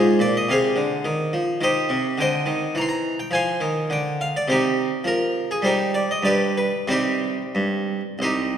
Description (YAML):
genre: classical, baroque-style suite movement for harpsichord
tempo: 89-108 BPM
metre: 3/4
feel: rubato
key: C minor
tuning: A4 = 439 Hz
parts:
  - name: harpsichord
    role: solo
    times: 0.0-8.6 s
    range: C2 to C6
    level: -20 LUFS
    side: equal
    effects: none
room: wet concert hall reverb, RT60 2.0 s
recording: heard from further back in the room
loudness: -20 LUFS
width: side -9 dB against mid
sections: 0.0-8.6 A section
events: none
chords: 0.0 Fm/Ab; 1.6 Cm; 2.7 N.C.; 3.3 Fm; 4.5 Cm; 5.0 N.C.; 5.6 Cm/G; 6.2 G; 6.9 Cm